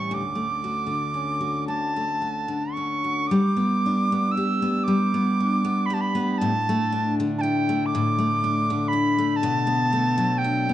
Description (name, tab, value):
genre	celtic folk, Celtic slow air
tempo	39 BPM (dotted quarters)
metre	6/8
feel	uneven beats, rubato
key	D major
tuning	A4 = 440 Hz
part	bright reedy mid whistle	melody	0.0-10.7 s	G5 to E6	-25 LUFS	right 2 dB	none
part	picked steel-string acoustic guitar	accompaniment	0.0-10.7 s	D2 to G4	-23 LUFS	left 1 dB	none
room	moderate recital hall reverb, RT60 1.4 s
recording	dark, warm production, nothing above 10.6 kHz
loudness	-21 LUFS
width	side -12 dB against mid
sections	0.0-3.3 A section; 3.3-10.7 B section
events	none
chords	0.1 Dmaj7; 3.3 G; 6.4 Dsus2/A; 9.4 Bm7